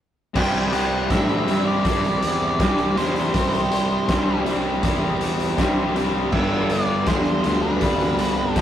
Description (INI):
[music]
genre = quiet-loud alternative rock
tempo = 80 BPM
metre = 4/4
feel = straight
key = unclear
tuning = A4 = 438 Hz
[part]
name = fuzz guitar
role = riff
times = 0.3-8.6 s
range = G2 to G4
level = -25 LUFS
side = left 3 dB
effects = distortion
[part]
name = octave-fuzz lead guitar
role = melody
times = 0.4-8.6 s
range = B4 to G5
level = -26 LUFS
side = equal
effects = distortion
[part]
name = fuzz guitar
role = riff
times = 0.4-8.6 s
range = G2 to C4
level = -26 LUFS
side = right 4 dB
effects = distortion
[part]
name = fuzz picked electric bass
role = bass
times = 0.4-8.6 s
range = G1 to A2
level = -26 LUFS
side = equal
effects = overdrive
[part]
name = raw garage drum kit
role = drums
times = 0.4-8.6 s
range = crash cymbal, hi-hat, kick drum, snare drum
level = -23 LUFS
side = equal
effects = none
[sound]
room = moderate small room ambience, RT60 0.5 s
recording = rough rehearsal-room recording, tube saturation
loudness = -18 LUFS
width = side -10 dB against mid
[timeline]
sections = 0.4-8.6 A section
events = stop 0.0-0.4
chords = 0.4 C; 6.3 G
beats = | 0.35 1.10 1.85 2.59 | 3.34 4.09 4.83 5.58 | 6.33 7.07 7.82 8.57